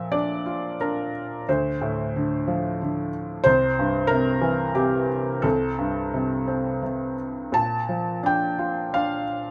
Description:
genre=classical, lyrical solo piano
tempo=89 BPM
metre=3/4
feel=uneven beats, rubato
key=Bb lydian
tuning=A4 = 440 Hz
part: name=felt-muted upright piano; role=solo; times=0.0-9.5 s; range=C2 to A5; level=-24 LUFS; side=equal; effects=none
room=light reverb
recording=none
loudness=-24 LUFS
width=mono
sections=0.0-9.5 A section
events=none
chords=0.0 Bb; 1.5 Dm7; 3.5 C7; 5.4 Am7/C; 7.5 Bbmaj7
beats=0.11 0.80 | 1.47 2.14 2.80 | 3.46 4.11 4.77 | 5.45 6.14 6.84 | 7.55 8.25 8.94

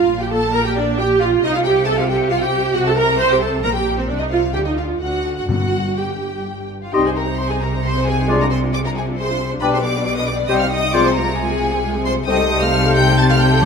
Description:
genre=quick classical-period movement for symphony orchestra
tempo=134 BPM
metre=3/4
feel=rubato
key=C minor from 6.9 s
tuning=A4 = 439 Hz
part: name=warm studio violin section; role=melody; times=0.0-13.6 s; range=C5 to A6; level=-26 LUFS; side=left 1 dB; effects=none
part: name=warm studio violin section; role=second line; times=0.0-13.7 s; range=F4 to C6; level=-24 LUFS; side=left 3 dB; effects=none
part: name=warm studio viola section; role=accompaniment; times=0.0-13.7 s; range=G3 to C5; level=-20 LUFS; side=right 3 dB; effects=none
part: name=warm studio cello section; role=bass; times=0.0-13.7 s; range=G2 to D3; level=-22 LUFS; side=left 1 dB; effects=none
part: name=warm studio double bass section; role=bass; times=0.0-13.7 s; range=G1 to D2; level=-26 LUFS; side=right 2 dB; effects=none
part: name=timpani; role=percussion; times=5.5-6.2, 13.6-13.7 s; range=G2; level=-21 LUFS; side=left 3 dB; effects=none
part: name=mellow clarinet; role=second line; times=6.9-13.6 s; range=D4 to G4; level=-26 LUFS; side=left 3 dB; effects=none
part: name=mellow large flute ensemble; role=second line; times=6.9-13.7 s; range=G5 to C6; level=-25 LUFS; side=left 3 dB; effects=none
part: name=warm oboe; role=second line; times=6.9-13.7 s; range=C5 to Eb5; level=-27 LUFS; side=right 1 dB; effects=none
part: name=mellow bassoon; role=accompaniment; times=6.9-13.6 s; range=G3 to Ab3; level=-26 LUFS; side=left 1 dB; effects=none
part: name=mellow French horn section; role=sustained chords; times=6.9-13.7 s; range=F3 to Eb4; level=-25 LUFS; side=left 6 dB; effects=none
room=moderate recital hall reverb, RT60 1.6 s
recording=none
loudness=-15 LUFS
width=side -6 dB against mid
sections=0.0-6.9 A section; 6.9-13.7 B section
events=none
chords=0.1 Bb6; 1.4 F#dim/C (rootless); 3.6 Gm/Bb; 4.1 Cmadd11; 4.5 D; 5.5 N.C.; 6.9 Cm; 8.3 Dm7b5/C; 9.6 G/B; 10.5 Cm; 11.0 Fm/C; 12.3 Am7b5/C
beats=| 0.10 0.54 0.98 | 1.43 1.87 2.31 | 2.75 3.20 3.64 | 4.09 4.55 5.01 | 5.49 5.98 6.46 | 6.94 7.39 7.84 | 8.29 8.74 9.19 | 9.63 10.07 10.51 | 10.95 11.40 11.84 | 12.28 12.73 13.18 | 13.63

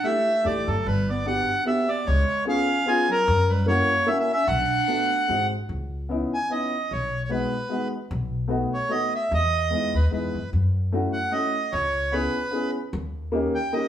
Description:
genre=musette waltz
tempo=149 BPM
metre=3/4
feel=swing 55% on 8ths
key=B minor, C# minor from 5.7 s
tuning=A4 = 443 Hz
part: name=accordion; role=melody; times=0.0-13.9 s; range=A4 to G#5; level=-24 LUFS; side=right 1 dB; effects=none
part: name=dark upright piano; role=accompaniment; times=0.0-13.9 s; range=G#3 to G#4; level=-28 LUFS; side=left 2 dB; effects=none
part: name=clear clarinet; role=second line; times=0.1-5.5 s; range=F#3 to E#4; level=-30 LUFS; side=right 3 dB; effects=none
part: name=upright bass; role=bass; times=0.5-13.5 s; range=G1 to F#2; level=-26 LUFS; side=left 1 dB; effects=none
room=wet studio reverb, RT60 1.0 s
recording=band playing live in one room, small room ambience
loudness=-22 LUFS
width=side -10 dB against mid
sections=0.0-5.7 A section; 5.7-13.9 B section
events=none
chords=0.0 A7sus4; 0.9 Gmaj7; 2.1 C#7; 3.3 F#7; 4.5 Bm7; 5.3 G#7; 5.7 C#m9; 6.9 G#m7/B; 8.1 B7; 9.3 Emaj7; 10.5 F#m7; 11.7 C#m7; 12.9 D#7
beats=0.05 0.46 | 0.87 1.27 1.67 | 2.07 2.47 2.87 | 3.27 3.67 4.07 | 4.47 4.88 5.28 | 5.69 6.10 6.50 | 6.91 7.31 7.71 | 8.10 8.50 8.90 | 9.31 9.71 10.12 | 10.52 10.93 11.33 | 11.73 12.13 12.54 | 12.94 13.34 13.74

